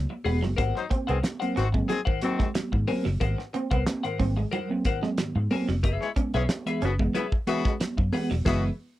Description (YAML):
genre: funk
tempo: 91 BPM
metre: 4/4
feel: straight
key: Ab mixolydian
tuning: A4 = 444 Hz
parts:
  - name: clean electric guitar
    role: riff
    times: 0.0-8.4 s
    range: Gb3 to Db4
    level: -33 LUFS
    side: right 5 dB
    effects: ensemble chorus
  - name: vintage muted fingered electric bass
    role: bass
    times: 0.0-8.7 s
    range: Fb1 to Ab2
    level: -26 LUFS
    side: equal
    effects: none
  - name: clean electric guitar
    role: accompaniment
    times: 0.1-8.7 s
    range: Ab4 to Ab5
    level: -32 LUFS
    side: left 7 dB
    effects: analog chorus
  - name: mellow tine electric piano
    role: stabs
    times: 0.3-8.7 s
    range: Ab2 to C4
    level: -30 LUFS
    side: right 2 dB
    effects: none
  - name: damped 70s drum kit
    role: drums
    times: 0.3-8.7 s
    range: crash cymbal, hi-hat, kick drum, snare drum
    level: -28 LUFS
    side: equal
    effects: none
  - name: congas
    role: percussion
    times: 0.3-8.3 s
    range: none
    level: -36 LUFS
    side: right 2 dB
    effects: none
  - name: clear horn section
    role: second line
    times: 0.8-8.6 s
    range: Db3 to Db5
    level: -29 LUFS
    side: left 6 dB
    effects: none
room: little or no reverb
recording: dry, close 1970s-style studio recording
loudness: -24 LUFS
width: side -15 dB against mid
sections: 0.0-9.0 A section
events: band accent 8.5-9.0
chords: 0.0 Gb9sus4; 0.6 Ab9; 5.8 Gb9sus4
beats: | 0.58 1.24 1.90 2.55 | 3.21 3.87 4.52 5.18 | 5.84 6.49 7.15 7.81 | 8.46